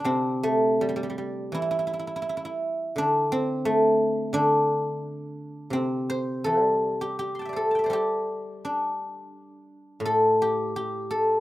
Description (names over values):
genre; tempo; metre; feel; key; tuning
chinese traditional, Chinese solo plucked strings; 79-89 BPM; 2/4; rubato; G zhi mode; A4 = 439 Hz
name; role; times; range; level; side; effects
guzheng; solo; 0.0-11.4 s; A2 to C6; -23 LUFS; equal; none
room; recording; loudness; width
studio reverb; rough home demo mix; -23 LUFS; side -16 dB against mid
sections
0.0-7.2 A section; 7.2-11.4 B section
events
none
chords
none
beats
| 0.06 0.80 | 1.54 2.27 | 2.97 3.66 | 4.34 5.02 | 5.72 6.45 | 7.19 7.92 | 8.64 9.33 | 10.03 10.74